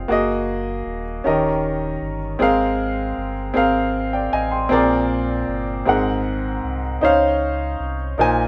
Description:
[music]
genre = slow gospel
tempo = 52 BPM (dotted quarters)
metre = 6/8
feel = straight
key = unclear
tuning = A4 = 440 Hz
[part]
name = clear upright piano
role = accompaniment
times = 0.0-8.5 s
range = Ab2 to C6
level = -21 LUFS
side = equal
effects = none
[part]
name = sub bass with octave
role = bass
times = 0.0-8.5 s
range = Eb1 to Db2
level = -30 LUFS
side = equal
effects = none
[sound]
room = moderate studio reverb, RT60 0.6 s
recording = rough home demo mix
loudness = -21 LUFS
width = mono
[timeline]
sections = 0.0-8.5 A section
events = none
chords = 0.1 Gb69; 1.3 Eb7; 2.4 Ab69; 4.7 Bb9; 5.9 Ab9; 7.0 Dbmaj9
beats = | 0.10 1.25 | 2.41 3.56 | 4.72 5.88 | 7.03 8.19

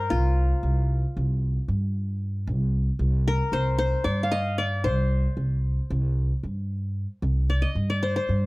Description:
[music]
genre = Turkish makam ensemble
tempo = 228 BPM (eighths)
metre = 9/8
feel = straight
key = C makam ussak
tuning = A4 = 440 Hz
[part]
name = qanun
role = melody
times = 0.0-8.5 s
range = F4 to F5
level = -27 LUFS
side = left 2 dB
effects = none
[part]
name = upright bass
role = bass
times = 0.0-8.5 s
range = C2 to G2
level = -24 LUFS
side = equal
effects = none
[sound]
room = little or no reverb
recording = dry, close 1970s-style studio recording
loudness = -23 LUFS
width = side -22 dB against mid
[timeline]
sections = 0.0-7.2 A section; 7.2-8.5 B section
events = none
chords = none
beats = | 0.10 0.37 0.63 0.89 1.16 1.42 1.68 1.95 2.21 | 2.47 2.74 3.00 3.26 3.53 3.79 4.05 4.32 4.58 | 4.84 5.11 5.37 5.64 5.90 6.17 6.43 6.70 6.96 | 7.22 7.49 7.75 8.02 8.28

